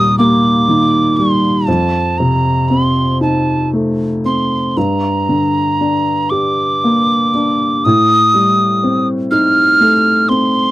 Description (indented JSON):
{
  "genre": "celtic folk, Celtic slow air",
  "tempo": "38-42 BPM (dotted quarters)",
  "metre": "6/8",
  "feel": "rubato",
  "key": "G minor",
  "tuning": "A4 = 440 Hz",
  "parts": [
    { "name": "mellow hollow wooden whistle", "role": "melody", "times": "0.0-10.7 s", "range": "A5 to F6", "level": "-14 LUFS", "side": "right 1 dB", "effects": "none" },
    { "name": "felt-muted upright piano", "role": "accompaniment", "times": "0.0-10.7 s", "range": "Eb2 to G4", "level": "-14 LUFS", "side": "left 1 dB", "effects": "none" }
  ],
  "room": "light reverb",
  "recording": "dry, close 1970s-style studio recording",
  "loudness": "-11 LUFS",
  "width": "side -16 dB against mid",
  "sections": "0.0-10.7 A section",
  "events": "none",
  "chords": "0.0 Eb; 1.7 F7; 4.8 Gm; 7.8 Am7b5"
}